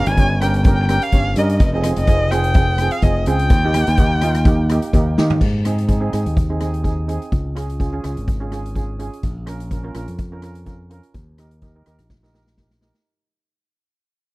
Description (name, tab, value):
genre	calypso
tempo	126 BPM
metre	4/4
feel	swing 54% on 16ths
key	Ab major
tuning	A4 = 440 Hz
part	clear erhu	melody	0.0-5.2 s	Eb5 to Ab5	-22 LUFS	left 1 dB	none
part	steel pan	accompaniment	0.0-13.1 s	Bb3 to Db5	-25 LUFS	right 3 dB	none
part	modern bright fingered electric bass	bass	0.0-12.9 s	F1 to Eb3	-20 LUFS	equal	none
part	street-band drum kit	drums	0.1-13.0 s	crash cymbal, hi-hat, kick drum, rim click, snare drum, toms	-18 LUFS	equal	none
room	little or no reverb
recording	dry, close 1970s-style studio recording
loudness	-16 LUFS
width	side -21 dB against mid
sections	0.0-5.4 A section; 5.4-13.1 B section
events	drum fill 5.2, 12.1-13.1; fade-out 5.4-13.1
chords	0.0 Gdim; 1.6 Fm; 3.5 Eb; 5.4 Ab; 7.3 Db; 9.2 Bbm; 11.1 Eb